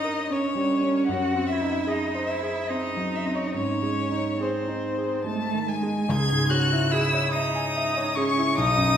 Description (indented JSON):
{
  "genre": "classical, slow romantic movement for piano trio",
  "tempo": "72 BPM",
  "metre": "3/4",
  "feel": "uneven beats, rubato",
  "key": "C# minor",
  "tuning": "A4 = 440 Hz",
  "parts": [
    { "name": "rich violin", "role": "melody", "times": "0.0-9.0 s", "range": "B#4 to G#6", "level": "-27 LUFS", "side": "left 4 dB", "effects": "none" },
    { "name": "clear cello", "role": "second line", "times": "0.0-9.0 s", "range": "G#3 to G#4", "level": "-28 LUFS", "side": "right 4 dB", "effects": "none" },
    { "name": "clear concert grand piano", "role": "accompaniment", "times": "0.0-9.0 s", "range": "B1 to G#5", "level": "-26 LUFS", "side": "equal", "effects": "none" }
  ],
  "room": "wet recital hall reverb, RT60 1.4 s",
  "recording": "heard from further back in the room",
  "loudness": "-22 LUFS",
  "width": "side -9 dB against mid",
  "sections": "0.0-6.1 A section; 6.1-9.0 B section",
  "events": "none",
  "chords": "0.0 D#7/G; 1.1 G#7/F#; 3.5 G#; 6.1 C#m"
}